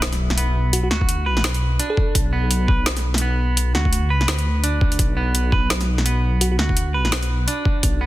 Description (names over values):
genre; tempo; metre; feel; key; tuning
half-time drum and bass; 169 BPM; 4/4; swing 59% on 16ths, half-time; B minor; A4 = 439 Hz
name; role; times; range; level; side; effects
dark detuned saw bass; bass; 0.0-8.1 s; B1 to D2; -20 LUFS; equal; none
drum and bass drum kit; drums; 0.0-7.9 s; hi-hat, snare drum; -23 LUFS; equal; overdrive, small room ambience
impact; sound effects; 0.0-0.7 s; none; barely audible; none; none
clean electric guitar; arpeggios; 0.4-8.1 s; B3 to B4; -26 LUFS; right 3 dB; ping-pong delay
bell-like FM electric piano; melody; 0.7-2.3, 6.4-6.6 s; F#4 to A4; -30 LUFS; equal; chorus, ping-pong delay
electronic kick drum; drums; 1.0-7.9 s; none; -19 LUFS; equal; overdrive, small room ambience
room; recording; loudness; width
little or no reverb; dense, heavily limited modern master; -17 LUFS; side -16 dB against mid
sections
0.0-8.1 A section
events
impact 0.0-0.7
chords
0.0 Bm